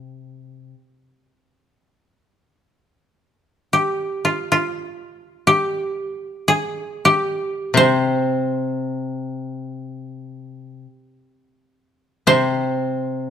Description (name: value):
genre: japanese traditional, Japanese chamber music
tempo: free time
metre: none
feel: none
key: unclear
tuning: A4 = 440 Hz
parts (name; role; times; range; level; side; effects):
- koto; melody; 0.0-0.3, 3.7-13.3 s; C4 to C5; -18 LUFS; right 1 dB; none
- koto; accompaniment; 0.0-0.7, 7.7-13.3 s; C3; -22 LUFS; left 2 dB; none
room: light reverb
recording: close, detailed microphones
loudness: -18 LUFS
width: side -9 dB against mid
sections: 0.0-2.5 A section; 2.5-13.3 A section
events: none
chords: none